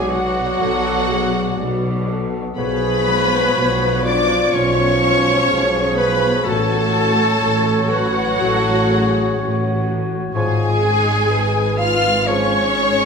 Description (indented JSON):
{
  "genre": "classical, slow romantic movement for symphony orchestra",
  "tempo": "62 BPM",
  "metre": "4/4",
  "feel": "rubato",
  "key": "unclear",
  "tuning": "A4 = 441 Hz",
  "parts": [
    { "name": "warm studio violin section", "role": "melody", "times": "0.0-13.1 s", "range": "F#5 to E#6", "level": "-22 LUFS", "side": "left 2 dB", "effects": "none" },
    { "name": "clear clarinet", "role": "second line", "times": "0.0-13.1 s", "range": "F#4 to E#5", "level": "-24 LUFS", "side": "left 1 dB", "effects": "none" },
    { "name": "large flute ensemble", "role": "second line", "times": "0.0-13.1 s", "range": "F#4 to E#5", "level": "-24 LUFS", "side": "right 1 dB", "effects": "none" },
    { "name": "mellow oboe", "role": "second line", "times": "0.0-12.6 s", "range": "C#5 to D5", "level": "-28 LUFS", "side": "right 2 dB", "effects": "none" },
    { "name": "warm studio violin section", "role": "second line", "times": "0.0-13.1 s", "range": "F#4 to E#5", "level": "-25 LUFS", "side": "left 2 dB", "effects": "none" },
    { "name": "mellow bassoon", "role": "accompaniment", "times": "0.0-12.7 s", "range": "E#3 to F#3", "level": "-26 LUFS", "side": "right 2 dB", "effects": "none" },
    { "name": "warm symphonic viola section", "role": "accompaniment", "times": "0.0-13.1 s", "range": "F#3 to E#4", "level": "-26 LUFS", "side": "right 1 dB", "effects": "none" },
    { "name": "warm French horn section", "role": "sustained chords", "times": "0.0-13.1 s", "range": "E#4 to B4", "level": "-24 LUFS", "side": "left 2 dB", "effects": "none" },
    { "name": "concert harp", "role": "arpeggios", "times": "0.0-13.1 s", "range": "G#2 to D5", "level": "-28 LUFS", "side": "left 8 dB", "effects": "none" },
    { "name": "dark tuba", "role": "bass", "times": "0.0-13.1 s", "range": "G#1 to B1", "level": "-26 LUFS", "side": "right 2 dB", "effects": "none" },
    { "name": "rich studio cello section", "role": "bass", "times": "0.0-13.1 s", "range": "G#2 to B2", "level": "-26 LUFS", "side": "right 2 dB", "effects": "none" },
    { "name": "rich studio double bass section", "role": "bass", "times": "0.0-13.1 s", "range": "G#1 to B1", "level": "-27 LUFS", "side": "right 3 dB", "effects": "none" }
  ],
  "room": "wet recital hall reverb, RT60 1.7 s",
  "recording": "minimal, uncompressed stereo recording, faint mains hum",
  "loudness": "-15 LUFS",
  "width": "side -5 dB against mid",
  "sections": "0.0-13.1 A section",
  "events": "none",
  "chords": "0.0 Bm7; 2.6 C#7/B; 6.5 F#m/A; 10.3 C#7/G#",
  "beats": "0.59 1.58 | 2.56 3.56 4.53 5.49 | 6.45 7.41 8.38 9.38 | 10.34 11.30 12.28"
}